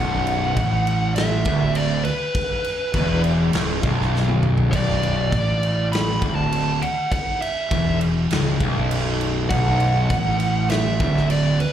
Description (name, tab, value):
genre	stoner and doom metal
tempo	101 BPM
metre	4/4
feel	straight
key	B minor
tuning	A4 = 440 Hz
part	fuzz lead guitar	melody	0.0-11.7 s	B4 to B5	-25 LUFS	right 1 dB	distortion, slapback echo, tape echo
part	fuzz guitar	riff	0.0-11.6 s	B1 to A2	-21 LUFS	equal	distortion
part	fuzz fingered electric bass	bass	0.0-11.6 s	B0 to A1	-26 LUFS	equal	overdrive
part	big rock drum kit	drums	0.3-11.7 s	crash cymbal, kick drum, snare drum, toms	-25 LUFS	equal	none
room	small room ambience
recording	live gig heard through the venue's PA, club reverb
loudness	-18 LUFS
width	side -10 dB against mid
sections	0.0-11.7 A section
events	drum fill 4.1-4.7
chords	0.0 Bm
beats	0.56 1.16 1.75 | 2.35 2.94 3.54 4.14 | 4.73 5.33 5.92 6.52 | 7.12 7.71 8.31 8.91 | 9.51 10.11 10.71 11.30